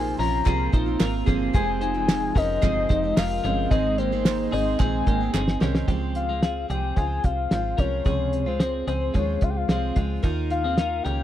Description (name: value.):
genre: jangly indie pop.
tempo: 110 BPM.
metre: 4/4.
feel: straight.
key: unclear.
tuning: A4 = 440 Hz.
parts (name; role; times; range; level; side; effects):
soft octave-layered synth lead; melody; 0.0-11.2 s; C5 to Bb5; -27 LUFS; left 5 dB; chorus, tremolo, tape echo.
picked steel-string acoustic guitar; accompaniment; 0.0-11.2 s; F2 to Ab4; -31 LUFS; right 9 dB; none.
phased analog pad; sustained chords; 0.0-5.9 s; C3 to C5; -35 LUFS; right 1 dB; phaser, chorus.
twelve-string electric guitar; arpeggios; 0.0-11.2 s; C3 to C5; -30 LUFS; left 1 dB; none.
slap-like FM bass; bass; 0.0-11.2 s; F1 to Eb2; -28 LUFS; equal; none.
cloth-damped thuddy drum kit; drums; 0.2-11.2 s; hi-hat, kick drum, snare drum; -22 LUFS; equal; none.
group handclap; percussion; 0.5-5.5 s; none; -36 LUFS; right 11 dB; none.
room: small room ambience.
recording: dry, close 1970s-style studio recording.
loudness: -21 LUFS.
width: side -12 dB against mid.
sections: 0.0-5.9 A section; 5.9-11.2 B section.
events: drum fill 5.3-5.9.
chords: 0.0 Bbsus2; 1.5 Fmadd9; 3.7 Ab; 5.9 Dbmaj7; 10.2 Ebsus2.